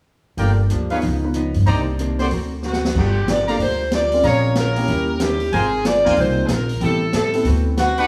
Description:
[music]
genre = jazz, big band swing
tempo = 187 BPM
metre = 4/4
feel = swing 63% on 8ths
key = unclear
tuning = A4 = 441 Hz
[part]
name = archtop guitar, miked and amplified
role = accompaniment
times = 0.4-8.0 s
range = G2 to B4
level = -30 LUFS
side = equal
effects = none
[part]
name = warm grand piano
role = accompaniment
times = 0.4-7.8 s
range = Bb3 to B4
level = -27 LUFS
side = equal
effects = none
[part]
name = clear trumpet section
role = stabs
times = 0.4-8.1 s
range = D4 to C6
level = -27 LUFS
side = equal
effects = none
[part]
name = upright bass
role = bass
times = 0.4-8.1 s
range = G1 to A2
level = -23 LUFS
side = equal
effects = none
[part]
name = open jazz drum kit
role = drums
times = 0.4-8.0 s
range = crash cymbal, hi-hat, kick drum, snare drum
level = -29 LUFS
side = equal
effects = none
[part]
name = warm saxophone section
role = melody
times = 2.7-8.1 s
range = F#4 to D5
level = -22 LUFS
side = equal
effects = none
[sound]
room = moderate large studio reverb, RT60 1.3 s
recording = small room ambience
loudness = -19 LUFS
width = mono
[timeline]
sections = 0.4-3.0 A section; 3.0-8.1 B section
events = drum fill 2.6-3.0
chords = 0.4 Gm7; 1.0 C#9; 1.7 Cm9; 2.3 D7b13; 3.0 Gm7; 4.2 Bbm7; 4.9 Eb7b9; 5.5 Ab69; 6.8 Am7; 7.4 D13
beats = | 0.38 0.70 1.02 1.35 | 1.67 1.99 2.31 2.63 | 2.95 3.27 3.60 3.92 | 4.24 4.56 4.88 5.20 | 5.52 5.84 6.17 6.49 | 6.81 7.13 7.45 7.77

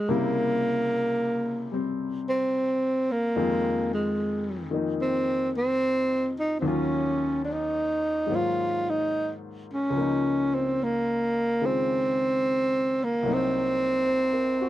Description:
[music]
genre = jazz ballad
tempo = 73 BPM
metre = 4/4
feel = swing 66% on 8ths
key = unclear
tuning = A4 = 441 Hz
[part]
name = breathy tenor saxophone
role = melody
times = 0.0-14.7 s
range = Ab3 to F4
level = -24 LUFS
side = right 1 dB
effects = none
[part]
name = warm upright piano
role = accompaniment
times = 0.0-14.7 s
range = C2 to C5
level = -30 LUFS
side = left 3 dB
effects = none
[sound]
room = light reverb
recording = dry, close 1970s-style studio recording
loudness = -24 LUFS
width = side -14 dB against mid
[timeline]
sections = 0.0-14.7 A section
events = none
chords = 0.1 C7b9; 3.4 Fm7; 6.6 Ebm7; 8.3 Ab13; 9.9 Db69; 13.3 Cm7b5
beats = | 0.08 0.90 1.72 2.54 | 3.36 4.18 5.00 5.82 | 6.64 7.46 8.29 9.12 | 9.95 10.78 11.60 12.43 | 13.25 14.07

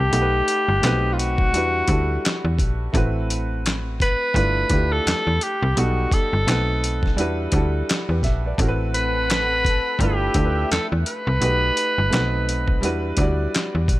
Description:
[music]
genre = R&B, neo-soul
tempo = 85 BPM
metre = 4/4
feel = swing 58% on 16ths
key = A dorian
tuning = A4 = 440 Hz
[part]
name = warm tenor saxophone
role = melody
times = 0.0-13.1 s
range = F4 to B4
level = -23 LUFS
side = equal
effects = tape echo
[part]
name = warm grand piano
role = accompaniment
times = 0.0-14.0 s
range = F#3 to F#5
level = -26 LUFS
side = right 1 dB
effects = none
[part]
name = slap-like FM bass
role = bass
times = 0.0-14.0 s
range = G1 to E2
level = -22 LUFS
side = equal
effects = none
[part]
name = dusty soul sampler-style drum kit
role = drums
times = 0.1-14.0 s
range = handclaps, hi-hat, kick drum, snare drum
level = -23 LUFS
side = equal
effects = none
[part]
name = lush unison pad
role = sustained chords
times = 8.6-11.4 s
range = C4 to B5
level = -32 LUFS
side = left 1 dB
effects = chorus
[sound]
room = little or no reverb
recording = none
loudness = -18 LUFS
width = side -17 dB against mid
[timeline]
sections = 0.0-14.0 A section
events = none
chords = 0.1 B7b13; 0.8 B7b9; 1.5 Em9; 2.9 Am69; 4.3 G13; 5.8 B7b13; 6.5 B7b9; 7.2 Em9; 8.6 Am69; 10.0 G13; 11.4 B7b13; 12.1 B7b9; 12.8 Em9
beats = | 0.12 0.82 1.53 2.23 | 2.94 3.64 4.35 5.06 | 5.76 6.47 7.17 7.88 | 8.59 9.29 10.00 10.70 | 11.41 12.12 12.82 13.53

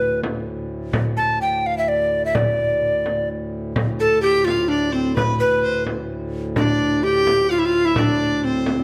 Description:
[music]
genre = medieval dance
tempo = 128 BPM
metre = 3/4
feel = straight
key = D dorian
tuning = A4 = 440 Hz
[part]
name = mellow hollow tenor recorder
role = melody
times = 0.0-8.8 s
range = C4 to A5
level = -21 LUFS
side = equal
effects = none
[part]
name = pedal harmonium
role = drone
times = 0.0-8.8 s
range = D2 to A2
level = -30 LUFS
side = equal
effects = none
[part]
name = frame drum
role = percussion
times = 0.0-8.8 s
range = none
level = -27 LUFS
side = equal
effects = none
[part]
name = bright fiddle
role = second line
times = 4.0-8.8 s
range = B4 to A5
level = -28 LUFS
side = equal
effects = none
[sound]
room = moderate recital hall reverb, RT60 1.4 s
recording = close, detailed microphones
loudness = -20 LUFS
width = mono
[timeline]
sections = 0.0-3.8 A section; 3.8-8.8 A section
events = none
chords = none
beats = 0.00 0.47 | 0.94 1.41 1.88 | 2.35 2.82 3.29 | 3.76 4.23 4.70 | 5.16 5.63 6.10 | 6.57 7.03 7.50 | 7.97 8.43

